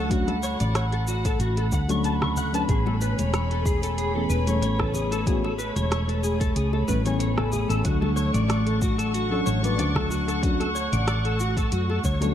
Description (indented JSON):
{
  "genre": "sunset chillout",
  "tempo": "93 BPM",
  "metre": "4/4",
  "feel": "swing 54% on 16ths",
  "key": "unclear",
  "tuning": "A4 = 436 Hz",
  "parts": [
    { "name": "mellow FM electric piano", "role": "accompaniment", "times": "0.0-12.3 s", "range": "E3 to C#6", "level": "-29 LUFS", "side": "left 2 dB", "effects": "chorus, auto-pan, tape echo" },
    { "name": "dark chamber string section", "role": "sustained chords", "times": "0.0-12.3 s", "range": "A3 to C#6", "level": "-29 LUFS", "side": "right 1 dB", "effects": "none" },
    { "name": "clean electric guitar", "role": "arpeggios", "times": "0.0-12.3 s", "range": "F#4 to C#6", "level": "-30 LUFS", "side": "left 2 dB", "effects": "ensemble chorus, tape echo" },
    { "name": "hollow-body short-scale fingered electric bass", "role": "bass", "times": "0.0-12.3 s", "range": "E1 to F#2", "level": "-26 LUFS", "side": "equal", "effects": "none" },
    { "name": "deep house drum kit", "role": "drums", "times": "0.1-12.3 s", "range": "cabasa, hi-hat, rim click", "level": "-33 LUFS", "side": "right 1 dB", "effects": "none" },
    { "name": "electronic kick drum", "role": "drums", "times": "0.1-12.2 s", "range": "none", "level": "-26 LUFS", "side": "equal", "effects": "none" },
    { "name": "bongos and congas", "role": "percussion", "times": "0.3-12.3 s", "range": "none", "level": "-35 LUFS", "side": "left 3 dB", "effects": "none" }
  ],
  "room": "light reverb",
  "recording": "dark, warm production",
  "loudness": "-22 LUFS",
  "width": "side -10 dB against mid",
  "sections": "0.0-12.3 A section",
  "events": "none",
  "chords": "0.0 Dmaj7; 2.7 Amaj9; 7.8 Dmaj7",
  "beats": "| 0.11 0.75 1.40 2.04 | 2.69 3.33 3.98 4.62 | 5.27 5.92 6.56 7.21 | 7.85 8.49 9.14 9.79 | 10.43 11.08 11.72"
}